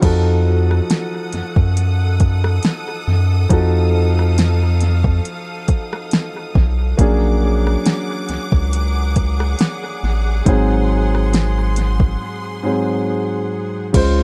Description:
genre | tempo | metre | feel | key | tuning
contemporary R&B | 69 BPM | 4/4 | swing 54% on 16ths | unclear | A4 = 438 Hz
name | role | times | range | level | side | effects
warm grand piano | accompaniment | 0.0-14.2 s | Ab2 to C5 | -24 LUFS | equal | analog delay
clear studio string section | sustained chords | 0.0-14.2 s | Db3 to Eb6 | -32 LUFS | equal | sidechain pumping
round analog bass | bass | 0.0-14.2 s | Ab1 to Gb2 | -18 LUFS | equal | none
smooth R&B drum kit | drums | 0.0-14.2 s | crash cymbal, hi-hat, kick drum, rim click, snare drum | -20 LUFS | equal | overdrive, vintage 12-bit sampler grit, analog delay
room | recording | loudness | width
little or no reverb | echo-heavy mix | -17 LUFS | mono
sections
0.0-13.9 A section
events
break 12.2-13.9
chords
0.0 F7b9; 7.0 Bb7alt; 10.5 Ab7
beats
| 0.03 0.90 1.77 2.64 | 3.51 4.38 5.25 6.12 | 6.98 7.85 8.72 9.59 | 10.46 11.33 12.20 13.07 | 13.94

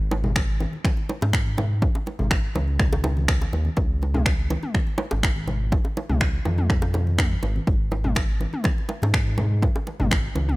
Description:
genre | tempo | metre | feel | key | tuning
afro house | 123 BPM | 4/4 | straight | unclear | A4 = 441 Hz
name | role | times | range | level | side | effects
round analog bass | bass | 0.0-10.6 s | G#1 to G#2 | -24 LUFS | equal | sidechain pumping
bongos | percussion | 0.1-10.5 s | none | -31 LUFS | right 1 dB | none
congas | percussion | 0.1-10.6 s | none | -32 LUFS | left 2 dB | none
deep house drum kit | drums | 0.4-10.6 s | finger snaps, toms | -28 LUFS | left 1 dB | overdrive
electronic kick drum | drums | 0.4-10.2 s | none | -23 LUFS | equal | overdrive
room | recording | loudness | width
studio reverb | none | -20 LUFS | side -21 dB against mid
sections
0.0-10.6 A section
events
none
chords
none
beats
0.36 0.85 1.33 | 1.82 2.31 2.80 3.29 | 3.77 4.26 4.75 5.24 | 5.72 6.21 6.70 7.19 | 7.67 8.16 8.65 9.14 | 9.63 10.11

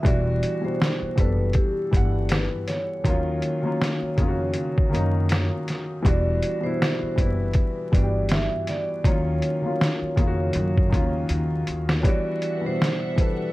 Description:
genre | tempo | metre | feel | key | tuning
lo-fi hip hop | 80 BPM | 4/4 | swing 55% on 16ths | E minor | A4 = 440 Hz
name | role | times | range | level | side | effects
vibraphone with medium mallets | melody | 0.0-13.5 s | G4 to E5 | -30 LUFS | right 2 dB | low-pass filter
warm upright piano | accompaniment | 0.0-13.5 s | B2 to F#5 | -26 LUFS | left 1 dB | low-pass filter
lo-fi sampler-style drum kit | drums | 0.0-13.4 s | hi-hat, kick drum, snare drum | -22 LUFS | equal | none
upright bass | bass | 0.1-12.0 s | E1 to F#2 | -26 LUFS | equal | none
clear studio string section | sustained chords | 12.1-13.5 s | G3 to F#5 | -38 LUFS | right 1 dB | low-pass filter
room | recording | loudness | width
moderate studio reverb, RT60 0.6 s | vinyl crackle | -21 LUFS | side -18 dB against mid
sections
0.0-13.5 A section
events
drum fill 11.3-12.0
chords
0.0 Em9; 3.0 D#m9; 6.0 Em9; 9.0 D#m9; 12.0 Em9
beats
| 0.05 0.80 1.55 2.30 | 3.05 3.80 4.55 5.30 | 6.05 6.80 7.55 8.30 | 9.05 9.80 10.55 11.30 | 12.05 12.80

